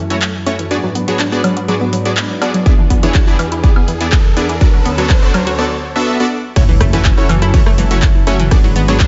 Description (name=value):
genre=progressive house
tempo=123 BPM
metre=4/4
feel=straight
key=F# minor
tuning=A4 = 440 Hz
part: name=lush unison pad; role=sustained chords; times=0.0-9.1 s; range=D2 to B4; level=-24 LUFS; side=equal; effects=chorus, vintage 12-bit sampler grit, sidechain pumping
part: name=analog pluck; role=arpeggios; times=0.0-9.1 s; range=E3 to F#4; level=-23 LUFS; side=equal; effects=chorus, sidechain pumping, tape echo
part: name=riser and impact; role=sound effects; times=2.0-8.5 s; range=none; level=-28 LUFS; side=equal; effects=none
part: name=supersaw stab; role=stabs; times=0.1-9.0 s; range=A3 to E5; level=-21 LUFS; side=equal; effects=sidechain pumping, tape echo
part: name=big-room dance drum kit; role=drums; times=0.1-9.1 s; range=handclaps, hi-hat, ride cymbal, shaker, woodblock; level=-24 LUFS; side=equal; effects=none
part: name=electronic kick drum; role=drums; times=2.7-9.1 s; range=none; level=-13 LUFS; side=equal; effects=none
part: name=dark detuned saw bass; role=bass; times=6.6-9.1 s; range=F#1 to G#1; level=-18 LUFS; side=equal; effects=sidechain pumping
part: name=electronic rim click and congas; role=percussion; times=6.6-9.1 s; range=none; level=-26 LUFS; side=equal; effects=sidechain pumping on snare, sidechain pumping on perc
room=light reverb, digital ambience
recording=nothing above 7.7 kHz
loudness=-13 LUFS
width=mono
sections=0.0-6.6 A section; 6.6-9.1 B section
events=build-up 0.0-6.6; filter sweep on synth arpeggio sound 0.0-6.6; filter sweep on analog synth pad 0.0-6.6; riser 2.0-5.6; break 5.6-6.6; drop 6.6-9.1; impact 6.6-8.5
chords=0.0 F#m7; 0.7 G#m7b5; 2.7 E7; 4.6 Bm7/D; 6.6 F#m7; 8.5 G#m7b5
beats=0.22 | 0.71 1.20 1.68 2.17 | 2.66 3.15 3.64 4.12 | 4.61 5.10 5.59 6.08 | 6.56 7.05 7.54 8.03 | 8.51 9.00